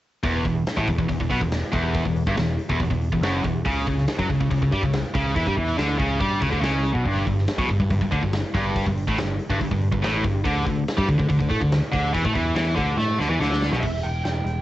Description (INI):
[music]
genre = hard rock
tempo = 141 BPM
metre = 4/4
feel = straight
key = unclear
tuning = A4 = 435 Hz
[part]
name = high-gain distorted guitar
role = riff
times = 0.2-13.8 s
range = E2 to A3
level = -23 LUFS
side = equal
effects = distortion, cassette tape
[part]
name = picked electric bass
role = bass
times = 0.2-14.6 s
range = E1 to A2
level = -25 LUFS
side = equal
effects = none
[part]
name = big rock drum kit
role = drums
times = 0.2-14.6 s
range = crash cymbal, hi-hat, kick drum, snare drum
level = -27 LUFS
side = equal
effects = cassette tape
[part]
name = lead guitar through a small cranked amp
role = melody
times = 13.8-14.6 s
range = E5 to G5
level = -30 LUFS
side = right 4 dB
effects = overdrive, cassette tape
[sound]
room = light reverb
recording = home recording on cassette, nothing above 8.0 kHz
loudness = -20 LUFS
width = side -15 dB against mid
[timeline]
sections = 0.2-13.8 A section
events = drum fill 13.0-13.8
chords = 0.2 N.C.; 3.7 Bmadd9 (rootless); 7.1 G5; 10.4 D5; 13.8 Em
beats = | 0.24 0.67 1.09 1.52 | 1.95 2.38 2.80 3.23 | 3.66 4.08 4.51 4.94 | 5.36 5.79 6.21 6.64 | 7.06 7.48 7.91 8.33 | 8.76 9.18 9.60 10.02 | 10.45 10.87 11.29 11.72 | 12.14 12.56 12.99 13.41 | 13.84 14.26